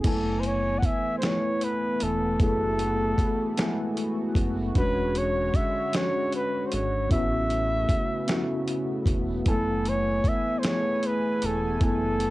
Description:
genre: slow six-eight R&B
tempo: 51 BPM (dotted quarters)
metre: 6/8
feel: straight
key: F# minor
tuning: A4 = 439 Hz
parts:
  - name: breathy flugelhorn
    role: melody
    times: 0.0-12.3 s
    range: G#4 to F#5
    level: -28 LUFS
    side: equal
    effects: none
  - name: mellow tine electric piano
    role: accompaniment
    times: 0.0-12.3 s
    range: F#3 to G#5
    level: -29 LUFS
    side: left 1 dB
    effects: fast stereo tremolo, cassette tape
  - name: chorused pulse-width pad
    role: sustained chords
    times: 0.0-12.3 s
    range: C#3 to G#5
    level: -33 LUFS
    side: right 1 dB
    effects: cassette tape
  - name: dusty soul sampler-style drum kit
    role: drums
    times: 0.0-12.3 s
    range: crash cymbal, hi-hat, kick drum, snare drum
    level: -27 LUFS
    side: equal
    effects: cassette tape
  - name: rubbery square bass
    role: bass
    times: 0.1-12.3 s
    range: E1 to A1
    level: -31 LUFS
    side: equal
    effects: none
room: little or no reverb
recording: home recording on cassette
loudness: -23 LUFS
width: side -18 dB against mid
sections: 0.0-12.3 A section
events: none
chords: 0.0 F#m11; 4.8 E13; 7.1 A69; 9.5 F#m11

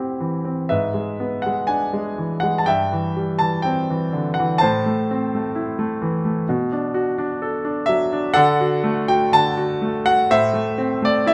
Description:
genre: classical, lyrical solo piano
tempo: 62 BPM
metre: 4/4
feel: rubato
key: A dorian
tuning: A4 = 440 Hz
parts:
  - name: clear concert grand piano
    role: solo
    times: 0.0-11.3 s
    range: G2 to A5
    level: -20 LUFS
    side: equal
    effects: none
room: moderate recital hall reverb, RT60 1.4 s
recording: none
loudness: -21 LUFS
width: mono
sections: 0.0-11.3 A section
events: none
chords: 0.0 Am7; 0.7 E7/G#; 2.7 Cadd9/G; 4.6 Am; 6.5 Bm7; 8.3 D; 10.3 Am

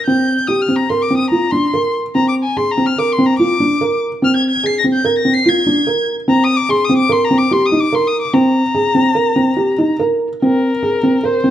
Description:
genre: contemporary instrumental, chamber music in an uneven meter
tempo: 146 BPM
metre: 5/4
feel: straight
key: Bb mixolydian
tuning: A4 = 440 Hz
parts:
  - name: dark violin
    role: melody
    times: 0.0-11.5 s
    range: Bb4 to C7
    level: -18 LUFS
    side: left 3 dB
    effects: none
  - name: felt-muted upright piano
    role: arpeggios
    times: 0.1-11.5 s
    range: C4 to Bb4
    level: -14 LUFS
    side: right 1 dB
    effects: none
room: moderate scoring stage reverb, RT60 1.6 s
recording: close, detailed microphones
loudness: -12 LUFS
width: side -11 dB against mid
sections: 0.0-10.4 A section; 10.4-11.5 B section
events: none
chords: 0.0 C7(no3); 2.2 Bb7sus2; 6.3 Abadd9 (rootless); 10.4 Bb7sus2

